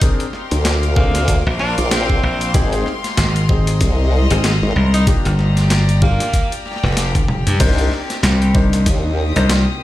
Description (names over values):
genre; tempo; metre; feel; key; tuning
glitch hop; 95 BPM; 4/4; swing 58% on 16ths; C minor; A4 = 440 Hz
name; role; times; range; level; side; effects
dark baby grand piano; stabs; 0.0-9.5 s; Bb3 to C5; -25 LUFS; left 3 dB; sidechain pumping, dub echo
boom bap sampler-style drum kit; drums; 0.0-9.6 s; crash cymbal, hi-hat, snare drum, toms; -22 LUFS; equal; overdrive
electronic kick drum; drums; 0.0-9.0 s; none; -16 LUFS; equal; overdrive
rich studio string section; texture; 0.0-9.8 s; Ab3 to Eb6; -25 LUFS; left 3 dB; sidechain pumping
formant-sweep wobble bass; bass; 0.5-9.3 s; Ab1 to Eb2; -17 LUFS; equal; chorus, tube saturation
bright tenor saxophone; melody; 1.0-6.5 s; Bb3 to Eb4; -25 LUFS; right 1 dB; vintage 12-bit sampler grit, dub echo
glassy slap bass; bass; 1.5-9.6 s; F1 to G2; -15 LUFS; equal; none
room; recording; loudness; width
little or no reverb; played on a big sound system in a bare room, stone room reverb; -14 LUFS; side -15 dB against mid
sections
0.0-9.8 A section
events
drum fill 7.0-7.6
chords
0.0 Bb9; 2.5 Abmaj7; 5.1 Gm7; 7.6 Cm9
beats
| 0.02 0.65 1.28 1.91 | 2.55 3.18 3.81 4.44 | 5.07 5.70 6.33 6.97 | 7.60 8.23 8.86 9.49